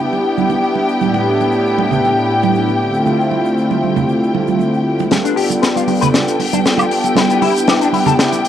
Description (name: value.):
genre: nu-disco, nu disco.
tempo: 117 BPM.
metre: 4/4.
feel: straight.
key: unclear.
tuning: A4 = 440 Hz.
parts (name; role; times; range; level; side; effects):
warm analog pad; accompaniment; 0.0-8.4 s; A2 to D5; -16 LUFS; left 1 dB; chorus, analog delay.
warm symphonic string section; sustained chords; 0.0-8.5 s; G4 to G5; -19 LUFS; left 1 dB; low-pass filter.
egg shaker and congas; percussion; 0.1-8.4 s; none; -20 LUFS; right 9 dB; none.
electric guitar with an envelope filter; riff; 5.1-8.1 s; B3 to B4; -20 LUFS; left 10 dB; ensemble chorus, low-pass filter.
tight funk drum kit; drums; 5.1-8.5 s; hi-hat, shaker, snare drum, woodblock; -17 LUFS; left 1 dB; studio reverb.
room: moderate spring reverb, RT60 2.6 s.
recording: home recording on cassette.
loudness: -12 LUFS.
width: side -10 dB against mid.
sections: 0.0-5.1 A section; 5.1-8.5 B section.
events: build-up 5.1-8.5; drum fill 5.1-8.5.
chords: 0.0 Em7; 1.0 A9sus4; 2.8 Dm7; 5.1 G9; 7.2 Em7.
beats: 0.50 | 1.01 1.52 2.04 2.55 | 3.06 3.57 4.09 4.60 | 5.11 5.63 6.14 6.65 | 7.16 7.68 8.19.